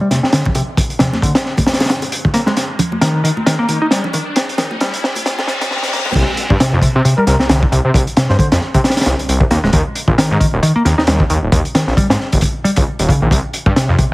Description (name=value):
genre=breakbeat, breaks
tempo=134 BPM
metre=4/4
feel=swing 58% on 16ths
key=C minor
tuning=A4 = 440 Hz
part: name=picked electric bass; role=riff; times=0.0-14.0 s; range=C3 to Eb4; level=-17 LUFS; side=equal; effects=tube saturation, vintage 12-bit sampler grit, low-pass filter
part: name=riser and reverse cymbal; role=sound effects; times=1.6-6.2 s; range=none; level=-26 LUFS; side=left 2 dB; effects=none
part: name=crunchy breakbeat drum kit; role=drums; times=0.1-14.1 s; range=crash cymbal, hi-hat, kick drum, snare drum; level=-15 LUFS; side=equal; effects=none
part: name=congas and bongos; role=percussion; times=0.1-6.1 s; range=none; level=-22 LUFS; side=right 1 dB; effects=none
part: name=detuned saw bass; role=bass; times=6.2-14.0 s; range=Eb1 to C3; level=-15 LUFS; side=equal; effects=tube saturation
part: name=trumpet with bucket mute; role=melody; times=7.2-8.5 s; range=Bb4 to C5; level=-22 LUFS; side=left 1 dB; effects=small speaker sound, dub echo
room=light reverb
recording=heavily compressed radio sound, multiband compression, vinyl crackle, high-pass filter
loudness=-12 LUFS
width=side -20 dB against mid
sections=0.0-6.2 A section; 6.2-14.1 B section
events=build-up 0.0-6.2; filter sweep on picked electric bass 0.0-6.2; filter sweep 0.0-6.2; riser 1.6-6.2; drum fill 2.6-6.2; reverse cymbal 5.3-6.2; drop 6.2-14.1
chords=0.0 Csus2; 2.3 N.C.; 13.3 Csus4